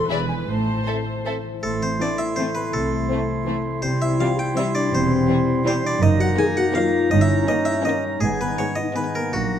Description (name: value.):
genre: cinematic, playful, whimsical film cue.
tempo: 163 BPM.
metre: 3/4.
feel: straight.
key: A minor, Eb minor from 6.0 s.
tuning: A4 = 440 Hz.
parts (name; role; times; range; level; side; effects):
bright small flute group; second line; 0.0-1.2 s; G#5 to B5; -31 LUFS; left 3 dB; none.
dark studio viola section; accompaniment; 0.0-9.2 s; Eb3 to C5; -31 LUFS; right 2 dB; none.
concert harp; arpeggios; 0.0-9.6 s; E2 to A5; -28 LUFS; left 6 dB; none.
dark studio double bass section; bass; 0.0-9.6 s; E1 to C2; -28 LUFS; right 6 dB; none.
warm studio cello section; bass; 0.0-9.6 s; E2 to C3; -26 LUFS; right 3 dB; none.
dark studio violin section; melody; 0.1-9.2 s; Bb3 to E5; -33 LUFS; left 4 dB; none.
rich studio violin section; second line; 0.1-9.3 s; G3 to D5; -32 LUFS; left 1 dB; none.
mellow French horn section; sustained chords; 0.1-9.6 s; Gb3 to A4; -26 LUFS; left 4 dB; none.
harpsichord; melody; 1.6-9.6 s; Gb4 to Ab5; -27 LUFS; equal; none.
clear clarinet; second line; 1.6-9.6 s; D4 to E4; -30 LUFS; left 2 dB; none.
warm oboe; second line; 1.6-9.6 s; Ab5 to C6; -29 LUFS; right 3 dB; none.
mellow bassoon; accompaniment; 1.6-9.6 s; G3 to Db4; -29 LUFS; right 3 dB; none.
room: moderate scoring stage reverb, RT60 1.8 s.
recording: none.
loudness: -19 LUFS.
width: side -9 dB against mid.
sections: 0.0-1.6 A section; 1.6-9.6 B section.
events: none.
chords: 0.1 E7; 0.5 Am; 2.7 Am/C; 3.8 C; 4.9 C/E; 6.0 Ebm/Gb; 7.1 Eb7/G; 8.2 Abm.